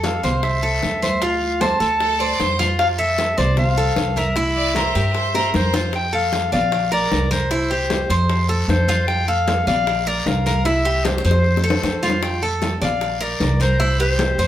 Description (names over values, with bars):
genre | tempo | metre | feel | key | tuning
latin, Cuban son and guajira | 153 BPM | 4/4 | straight | F major | A4 = 441 Hz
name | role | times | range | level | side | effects
clear clarinet | melody | 0.0-14.5 s | C5 to A5 | -22 LUFS | left 2 dB | none
Cuban tres | arpeggios | 0.0-14.5 s | E4 to D5 | -23 LUFS | right 2 dB | none
upright bass | bass | 0.0-14.5 s | Bb1 to G2 | -22 LUFS | equal | none
bongos | percussion | 0.0-14.5 s | none | -28 LUFS | left 4 dB | none
congas | percussion | 0.0-14.5 s | none | -27 LUFS | left 1 dB | none
guiro | percussion | 0.0-14.5 s | none | -32 LUFS | left 3 dB | none
bright studio violin section | second line | 2.0-5.9 s | A4 to D5 | -25 LUFS | equal | none
room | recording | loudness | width
moderate studio reverb, RT60 0.8 s | band playing live in one room | -16 LUFS | side -11 dB against mid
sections
0.0-5.9 A section; 5.9-14.5 B section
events
drum fill 5.3-5.9, 11.0-12.2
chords
0.0 Fmaj7; 1.2 Dm7; 2.8 Fmaj7; 4.4 C7; 5.9 F; 6.7 Bb; 7.5 C; 8.3 F; 9.9 Bb; 10.7 C; 11.4 F; 13.0 Bb; 13.8 C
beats
0.04 0.43 0.82 | 1.22 1.61 2.00 2.40 | 2.79 3.18 3.58 3.97 | 4.36 4.75 5.15 5.54 | 5.93 6.33 6.72 7.12 | 7.51 7.90 8.29 8.69 | 9.08 9.47 9.87 10.26 | 10.65 11.05 11.44 11.83 | 12.23 12.62 13.01 13.41 | 13.80 14.19